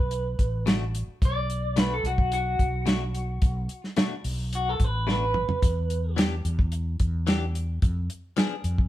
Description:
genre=straight-eighth soul blues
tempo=109 BPM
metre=4/4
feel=straight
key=B minor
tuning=A4 = 440 Hz
part: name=electric guitar through a small old amp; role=melody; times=0.0-6.2 s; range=F#4 to D5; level=-29 LUFS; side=equal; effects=tremolo
part: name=mellow fretless electric bass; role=bass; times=0.0-8.9 s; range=A1 to F2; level=-28 LUFS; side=equal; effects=none
part: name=warm soul drum kit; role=drums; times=0.1-8.9 s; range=hi-hat, kick drum, snare drum, toms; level=-25 LUFS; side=equal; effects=none
part: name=direct-recorded clean electric guitar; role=stabs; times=0.7-8.5 s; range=B2 to Ab4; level=-32 LUFS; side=left 6 dB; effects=spring reverb
room=light reverb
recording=band playing live in one room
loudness=-24 LUFS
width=side -14 dB against mid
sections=0.0-8.9 A section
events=clean electric guitar solo 0.0-8.9; drum fill 5.1-5.6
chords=0.0 Bm7; 5.6 Em7; 7.8 Fdim7

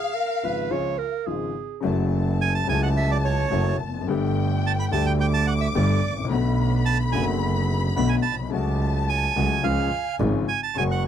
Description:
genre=tango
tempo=108 BPM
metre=4/4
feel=rubato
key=F# minor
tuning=A4 = 439 Hz
part: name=clear clarinet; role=second line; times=0.0-1.8 s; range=G#4 to C#5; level=-29 LUFS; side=right 12 dB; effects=none
part: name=warm studio violin section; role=second line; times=0.0-11.1 s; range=E#5 to D6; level=-32 LUFS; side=left 6 dB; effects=none
part: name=warm concert grand piano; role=accompaniment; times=0.4-11.1 s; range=F#1 to G4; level=-26 LUFS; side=left 6 dB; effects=none
part: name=clear double bass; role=bass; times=1.8-11.1 s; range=E#1 to D2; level=-24 LUFS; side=right 3 dB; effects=none
part: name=bandoneon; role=melody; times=2.4-11.0 s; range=C#5 to B5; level=-26 LUFS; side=right 8 dB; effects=none
room=little or no reverb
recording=dry, close 1970s-style studio recording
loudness=-21 LUFS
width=side -9 dB against mid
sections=0.0-1.8 A section; 1.8-11.1 B section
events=break 0.0-1.8; violin section solo 0.0-1.8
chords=0.0 C#; 1.8 F#m7; 4.1 Gsus2; 6.3 Bm7; 8.5 F#m/C#; 9.6 C#

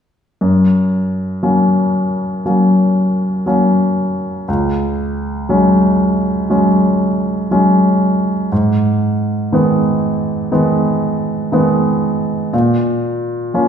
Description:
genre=pop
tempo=59 BPM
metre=4/4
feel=straight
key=F# major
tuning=A4 = 445 Hz
part: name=clear baby grand piano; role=accompaniment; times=0.4-13.7 s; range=C#2 to C#4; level=-13 LUFS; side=equal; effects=none
room=wet recital hall reverb, RT60 1.3 s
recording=recorded in a church or concert hall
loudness=-13 LUFS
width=side -8 dB against mid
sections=0.4-13.7 A section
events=none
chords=0.4 F#; 4.5 C#sus4; 8.5 G#m; 12.5 A#5

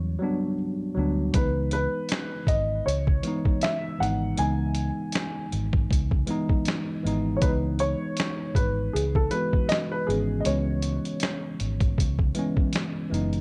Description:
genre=lo-fi hip hop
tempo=79 BPM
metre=4/4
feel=swing 59% on 16ths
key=C# minor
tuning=A4 = 440 Hz
part: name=dark upright piano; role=melody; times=0.0-12.7 s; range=G#4 to G#5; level=-32 LUFS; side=equal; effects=low-pass filter
part: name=mellow tine electric piano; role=accompaniment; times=0.0-13.4 s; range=E3 to F#4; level=-32 LUFS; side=equal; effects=low-pass filter
part: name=vintage muted fingered electric bass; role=bass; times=0.0-13.4 s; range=F#1 to E2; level=-30 LUFS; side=equal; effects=none
part: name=dusty soul sampler-style drum kit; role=drums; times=1.3-13.4 s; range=finger snaps, hi-hat, kick drum, snare drum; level=-28 LUFS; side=equal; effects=none
room=light reverb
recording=cassette tape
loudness=-26 LUFS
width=mono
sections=0.0-13.4 A section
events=none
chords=0.0 Em9; 1.3 C#m9

